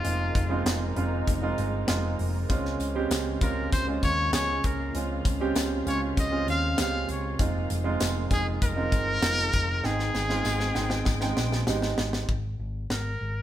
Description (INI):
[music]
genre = piano-driven pop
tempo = 98 BPM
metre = 4/4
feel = straight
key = Ab major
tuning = A4 = 439 Hz
[part]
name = bright trumpet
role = melody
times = 0.0-13.4 s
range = F4 to F5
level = -29 LUFS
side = left 1 dB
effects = none
[part]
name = warm upright piano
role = accompaniment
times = 0.0-12.3 s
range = Ab2 to G5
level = -30 LUFS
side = right 4 dB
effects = none
[part]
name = dark studio string section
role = sustained chords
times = 0.0-12.3 s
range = Db3 to G5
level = -38 LUFS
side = left 3 dB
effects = none
[part]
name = picked electric bass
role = bass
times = 0.0-13.4 s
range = F1 to Eb2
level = -30 LUFS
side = left 1 dB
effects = none
[part]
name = modern studio drum kit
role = drums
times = 0.0-13.1 s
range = handclaps, hi-hat, kick drum, snare drum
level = -29 LUFS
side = left 1 dB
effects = none
[part]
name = tambourine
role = percussion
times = 2.5-11.8 s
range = none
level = -44 LUFS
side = left 7 dB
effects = none
[sound]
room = light reverb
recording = band playing live in one room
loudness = -24 LUFS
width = side -12 dB against mid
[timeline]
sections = 0.0-12.3 A section; 12.3-13.4 B section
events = drum fill 9.8-12.3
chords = 0.0 Fm7; 2.5 Dbmaj7; 7.4 Fm7; 9.8 Abmaj7; 12.3 N.C.